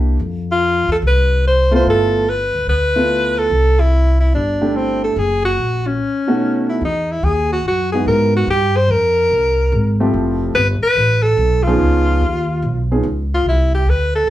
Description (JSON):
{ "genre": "jazz, small-group swing and bop", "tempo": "145 BPM", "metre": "4/4", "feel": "swing 66% on 8ths", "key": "unclear", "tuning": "A4 = 440 Hz", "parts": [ { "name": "warm grand piano", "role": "accompaniment", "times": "0.0-13.0 s", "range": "B2 to Ab4", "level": "-18 LUFS", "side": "right 1 dB", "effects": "none" }, { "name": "upright bass", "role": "bass", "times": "0.0-14.3 s", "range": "F1 to G#2", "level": "-17 LUFS", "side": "equal", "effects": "none" }, { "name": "breathy alto saxophone", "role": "melody", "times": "0.5-14.3 s", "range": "C4 to C5", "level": "-16 LUFS", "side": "equal", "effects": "none" } ], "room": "wet studio ambience, RT60 0.5 s", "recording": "heard from further back in the room", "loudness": "-14 LUFS", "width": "side -14 dB against mid", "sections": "0.0-6.8 A section; 6.8-14.3 B section", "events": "none", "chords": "0.2 F5; 1.9 G13; 3.5 C6; 5.2 F#add9; 6.0 B9; 6.8 Emaj7; 8.5 Gm7; 9.3 C7b13; 10.1 Fmaj7; 11.8 Db9; 13.5 C", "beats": "| 0.19 0.61 1.02 1.44 | 1.85 2.27 2.68 3.10 | 3.51 3.92 4.34 4.75 | 5.17 5.58 6.00 6.41 | 6.83 7.24 7.66 8.07 | 8.49 8.90 9.32 9.73 | 10.15 10.56 10.97 11.39 | 11.80 12.22 12.63 13.05 | 13.46 13.88 14.29" }